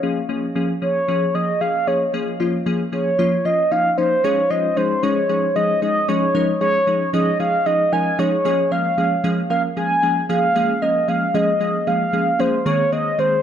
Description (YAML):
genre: pop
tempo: 114 BPM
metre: 4/4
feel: straight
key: unclear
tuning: A4 = 439 Hz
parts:
  - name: glassy digital keys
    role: accompaniment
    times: 0.0-13.4 s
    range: Eb3 to Bb4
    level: -21 LUFS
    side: left 1 dB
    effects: chorus, low-pass filter
  - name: mellow horn-like synth lead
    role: melody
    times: 0.8-13.4 s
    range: C5 to Ab5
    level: -19 LUFS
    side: equal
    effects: chorus, low-pass filter, ping-pong delay
room: light reverb, digital ambience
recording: none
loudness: -17 LUFS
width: side -9 dB against mid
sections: 0.0-4.2 A section; 4.2-13.4 B section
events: build-up 0.0-4.2; drop 4.2-13.4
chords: 0.0 Db; 4.2 Dbadd9; 8.5 Bbm7; 12.7 Abadd9